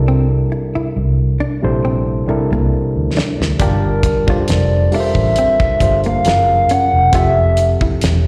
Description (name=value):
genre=R&B, neo-soul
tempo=68 BPM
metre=4/4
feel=swing 53% on 16ths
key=unclear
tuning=A4 = 440 Hz
part: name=overdriven reed electric piano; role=accompaniment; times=0.0-8.3 s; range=C3 to A5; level=-22 LUFS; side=equal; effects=slapback echo
part: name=vintage muted fingered electric bass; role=bass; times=0.0-8.3 s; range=E1 to D2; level=-18 LUFS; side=equal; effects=none
part: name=hollow-body jazz guitar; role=second line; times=0.1-8.0 s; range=Bb3 to G4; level=-26 LUFS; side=equal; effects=slapback echo
part: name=damped 70s drum kit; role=drums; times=3.2-8.2 s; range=hi-hat, kick drum, snare drum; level=-21 LUFS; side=equal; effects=none
part: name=hollow clarinet-like synth lead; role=melody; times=3.6-8.0 s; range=Bb4 to F#5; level=-18 LUFS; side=equal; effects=chorus, slapback echo
room=studio ambience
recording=live gig heard through the venue's PA, recital hall reverb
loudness=-15 LUFS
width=mono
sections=0.0-8.3 A section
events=drum fill 1.8-3.6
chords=0.0 C13; 3.6 Gm9; 6.2 F#maj9; 7.1 Fmaj9